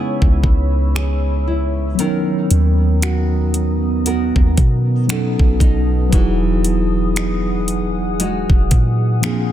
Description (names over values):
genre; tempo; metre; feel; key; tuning
contemporary R&B; 58 BPM; 4/4; swing 58% on 16ths; unclear; A4 = 439 Hz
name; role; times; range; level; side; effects
mellow tine electric piano; accompaniment; 0.0-9.5 s; E#3 to B4; -21 LUFS; equal; medium stereo tremolo
deep dark ambient pad; sustained chords; 0.0-9.5 s; B3 to E6; -26 LUFS; right 3 dB; chorus, built-in reverb, sidechain pumping
nylon-string guitar; arpeggios; 0.0-9.5 s; A#2 to A#4; -26 LUFS; left 2 dB; tape echo
soft 808-style bass; bass; 0.2-9.5 s; E1 to B2; -17 LUFS; equal; none
smooth R&B drum kit; drums; 0.2-9.5 s; finger snaps, hi-hat, kick drum; -16 LUFS; equal; soft clipping on snare
room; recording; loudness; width
digital ambience; dense, heavily limited modern master; -14 LUFS; side -11 dB against mid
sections
0.0-9.5 A section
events
none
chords
0.0 C#m7; 2.0 Bmaj7/D#; 5.1 B7; 6.1 Emaj9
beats
0.95 | 1.99 3.02 4.06 5.09 | 6.12 7.16 8.19 9.23